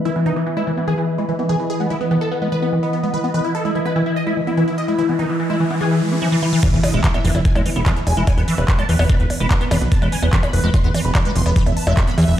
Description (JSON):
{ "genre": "psychedelic trance", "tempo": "146 BPM", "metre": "4/4", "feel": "straight", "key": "E major", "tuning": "A4 = 440 Hz", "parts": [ { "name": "swarming drone", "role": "sustained chords", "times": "0.0-12.4 s", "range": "E3 to E4", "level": "-24 LUFS", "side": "right 1 dB", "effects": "built-in reverb, vintage 12-bit sampler grit, sidechain pumping" }, { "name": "warbly tape-like pad", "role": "texture", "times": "0.0-6.7 s", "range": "E3 to E5", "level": "-29 LUFS", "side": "equal", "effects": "chorus, built-in reverb, sidechain pumping" }, { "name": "supersaw stab", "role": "melody", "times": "0.1-12.4 s", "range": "E3 to C6", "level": "-24 LUFS", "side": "left 1 dB", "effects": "phaser, sidechain pumping, ping-pong delay" }, { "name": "liquid acid bass", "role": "riff", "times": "0.1-12.2 s", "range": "E3 to E4", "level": "-23 LUFS", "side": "equal", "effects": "chorus, auto-pan, sidechain pumping, ping-pong delay" }, { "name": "riser and impact", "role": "sound effects", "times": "4.8-8.3 s", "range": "none", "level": "-27 LUFS", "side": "equal", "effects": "none" }, { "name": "electronic kick drum", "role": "drums", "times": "6.6-12.1 s", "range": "none", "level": "-16 LUFS", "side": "equal", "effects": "none" }, { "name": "techno drum kit", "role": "drums", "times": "6.6-12.4 s", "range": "crash cymbal, handclaps, hi-hat, percussion blips", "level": "-25 LUFS", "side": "equal", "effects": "none" }, { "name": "plucky analog bass", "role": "bass", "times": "6.7-12.3 s", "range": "E1 to E2", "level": "-17 LUFS", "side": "equal", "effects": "none" }, { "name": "formant-sweep wobble bass", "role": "second line", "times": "7.7-8.2 s", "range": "G#3 to B3", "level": "-35 LUFS", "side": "right 2 dB", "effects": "none" } ], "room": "moderate digital room reverb, RT60 1.0 s, digital ambience", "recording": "played on a big sound system in a bare room, stone room reverb", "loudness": "-16 LUFS", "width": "side -11 dB against mid", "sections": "0.0-6.6 A section; 6.6-12.4 B section", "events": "filter sweep on synth drone 0.0-6.6; riser 4.8-6.6; drop 6.6-12.4; impact 6.6-8.3", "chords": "0.0 E5", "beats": "| 0.05 0.47 0.88 1.29 | 1.70 2.11 2.52 2.93 | 3.34 3.75 4.16 4.58 | 4.99 5.40 5.81 6.22 | 6.63 7.04 7.45 7.86 | 8.27 8.68 9.10 9.51 | 9.92 10.33 10.74 11.15 | 11.56 11.97 12.38" }